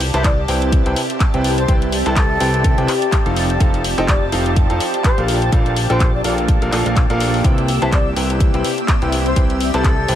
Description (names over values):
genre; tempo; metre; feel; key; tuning
piano house; 125 BPM; 4/4; swing 56% on 16ths; C major; A4 = 440 Hz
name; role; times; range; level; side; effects
analog string pad; sustained chords; 0.0-10.2 s; G4 to E6; -25 LUFS; left 2 dB; ensemble chorus, sidechain pumping
fat analog bass; bass; 0.0-10.2 s; F1 to C2; -20 LUFS; equal; sidechain pumping
house drum kit; drums; 0.0-10.2 s; handclaps, hi-hat; -24 LUFS; left 1 dB; none
ethereal airy pad; texture; 0.0-10.2 s; Bb3 to D6; -26 LUFS; right 1 dB; ensemble chorus, built-in reverb, sidechain pumping
mellow jazz flute; melody; 0.1-10.2 s; A4 to E5; -26 LUFS; left 1 dB; analog delay
bright concert grand piano; riff; 0.1-10.2 s; Bb2 to A5; -22 LUFS; equal; sidechain pumping, analog delay
electronic kick drum; drums; 0.2-10.0 s; none; -16 LUFS; equal; none
room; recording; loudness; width
light reverb, digital ambience; none; -14 LUFS; side -11 dB against mid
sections
0.0-10.2 A section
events
none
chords
0.0 Cmaj7; 3.4 F7; 5.3 Bbmaj7; 7.4 Cmaj7